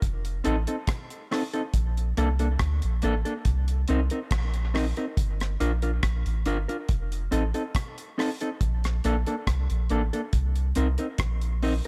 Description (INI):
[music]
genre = dub reggae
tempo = 70 BPM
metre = 4/4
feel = straight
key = unclear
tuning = A4 = 440 Hz
[part]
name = soft dub sub bass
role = bass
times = 0.0-11.8 s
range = F1 to D2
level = -28 LUFS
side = equal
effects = none
[part]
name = deep reggae drum kit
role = drums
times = 0.0-11.9 s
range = hi-hat, kick drum, rim click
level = -32 LUFS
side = equal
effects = none
[part]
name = mellow electric guitar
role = accompaniment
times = 0.4-11.9 s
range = Bb3 to Bb4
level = -32 LUFS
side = equal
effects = dub echo
[sound]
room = small room ambience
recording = none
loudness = -27 LUFS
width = mono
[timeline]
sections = 0.0-11.9 A section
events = none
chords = 0.0 F7; 1.7 Bbmaj7; 3.5 Cm7; 5.2 Gm7; 6.9 F7; 8.6 Bbmaj7; 10.3 Cm7